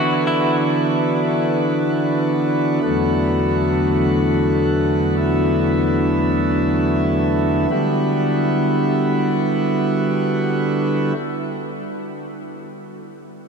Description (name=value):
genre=dream pop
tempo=free time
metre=none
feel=none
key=E minor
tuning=A4 = 440 Hz
part: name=pipe organ, principal chorus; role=sustained chords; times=0.0-11.1 s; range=E2 to F#4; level=-17 LUFS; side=equal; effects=none
part: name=direct-recorded clean electric guitar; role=arpeggios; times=0.0-0.6 s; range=E4 to F#4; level=-25 LUFS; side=equal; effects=wide subtle chorus, analog delay
room=wet huge ambient reverb, RT60 7.6 s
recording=dreamy mix soaked in reverb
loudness=-16 LUFS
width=side -5 dB against mid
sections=0.0-7.7 A section; 7.7-10.4 B section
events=slowing down 2.8-7.7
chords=0.0 Esus2; 2.8 Bm7/E; 7.7 Em9